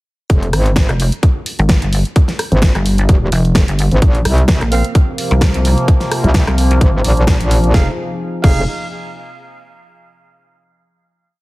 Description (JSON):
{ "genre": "bass house", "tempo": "129 BPM", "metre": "4/4", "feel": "swing 54% on 16ths", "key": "F minor", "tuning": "A4 = 436 Hz", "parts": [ { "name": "metallic wobble bass", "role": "bass", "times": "0.3-8.7 s", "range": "Eb1 to C2", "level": "-14 LUFS", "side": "equal", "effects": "chorus, sidechain pumping" }, { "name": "big-room dance drum kit", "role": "drums", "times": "0.3-8.5 s", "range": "crash cymbal, hi-hat, rim click, snare drum", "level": "-20 LUFS", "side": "equal", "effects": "none" }, { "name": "electronic kick drum", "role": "drums", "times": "0.3-8.5 s", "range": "none", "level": "-13 LUFS", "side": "equal", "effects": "none" }, { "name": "pulsing pluck wobble bass", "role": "bass", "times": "0.9-6.8 s", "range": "F1 to C2", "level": "-13 LUFS", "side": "equal", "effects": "chorus, tube saturation, sidechain pumping" }, { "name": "sweeping resonant pad", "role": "sustained chords", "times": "4.0-8.0 s", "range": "C3 to Ab4", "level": "-21 LUFS", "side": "equal", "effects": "chorus, phaser, sidechain pumping" }, { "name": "warm horn section", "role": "stabs", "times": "4.7-4.8, 7.7-8.6 s", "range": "C4 to F5", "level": "-24 LUFS", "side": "right 4 dB", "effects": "sidechain pumping, dub echo" } ], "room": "digital ambience", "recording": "heavily compressed radio sound", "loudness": "-11 LUFS", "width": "side -20 dB against mid", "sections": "0.3-7.7 drop; 7.7-9.6 final chord", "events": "drop 0.3-7.7", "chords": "0.3 Fm; 4.0 Bbsus2; 7.7 Fm7" }